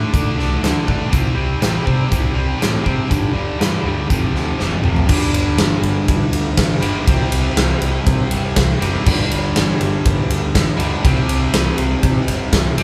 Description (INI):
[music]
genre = classic rock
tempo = 121 BPM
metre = 4/4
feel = straight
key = unclear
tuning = A4 = 440 Hz
[part]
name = cranked stack guitar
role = riff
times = 0.0-12.8 s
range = F2 to D4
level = -22 LUFS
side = equal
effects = overdrive
[part]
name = growling picked electric bass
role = bass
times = 0.0-12.8 s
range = F1 to C3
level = -24 LUFS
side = equal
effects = overdrive
[part]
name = big rock drum kit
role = drums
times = 0.1-12.8 s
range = crash cymbal, hi-hat, kick drum, ride cymbal, snare drum, toms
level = -20 LUFS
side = equal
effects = none
[sound]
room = moderate large studio reverb, RT60 1.1 s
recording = band playing live in one room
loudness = -17 LUFS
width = mono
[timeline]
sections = 0.0-5.1 A section; 5.1-12.8 B section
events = drum fill 4.6-5.1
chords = 0.0 D5; 1.1 C5; 3.1 G5; 4.1 F5; 5.1 G5; 7.1 C5; 9.1 G5; 11.0 C5